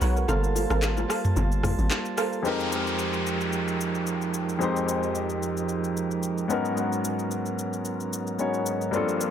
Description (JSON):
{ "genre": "amapiano", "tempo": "111 BPM", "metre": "4/4", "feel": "swing 55% on 16ths", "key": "unclear", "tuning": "A4 = 440 Hz", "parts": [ { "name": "pipe organ, flutes", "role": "sustained chords", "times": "0.0-9.3 s", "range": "F2 to A5", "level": "-30 LUFS", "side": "right 4 dB", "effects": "none" }, { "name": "punchy chord stab", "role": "stabs", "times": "0.0-2.4 s", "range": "A4 to Gb5", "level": "-31 LUFS", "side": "right 3 dB", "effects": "chorus, phaser, dub echo" }, { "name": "hollow log drum bass", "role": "bass", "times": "0.0-1.9 s", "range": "G1 to Cb2", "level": "-24 LUFS", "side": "equal", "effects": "none" }, { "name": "afro-pop drum kit", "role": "drums", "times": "0.0-9.3 s", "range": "handclaps, hi-hat, rim click, shaker, toms", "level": "-32 LUFS", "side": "equal", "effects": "dub echo" }, { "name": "congas and bongos", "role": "percussion", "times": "0.3-2.0 s", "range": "none", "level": "-34 LUFS", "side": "left 8 dB", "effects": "none" }, { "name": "clear baby grand piano", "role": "accompaniment", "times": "2.4-9.3 s", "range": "F2 to Db5", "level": "-28 LUFS", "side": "left 4 dB", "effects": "dub echo" }, { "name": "downlifter", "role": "sound effects", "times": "2.4-6.8 s", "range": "none", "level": "-34 LUFS", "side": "equal", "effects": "none" } ], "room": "light reverb, digital ambience", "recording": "echo-heavy mix", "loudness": "-24 LUFS", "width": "side -9 dB against mid", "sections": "0.0-2.4 A section; 2.4-9.3 B section", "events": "drop 0.0-2.4; kick muted 0.3-2.4", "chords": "0.3 Gm11; 2.4 Fm11; 6.5 Abm11", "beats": "| 0.28 0.82 1.37 1.91 | 2.45 2.99 3.53 4.07 | 4.61 5.15 5.69 6.23 | 6.77 7.31 7.85 8.39 | 8.93" }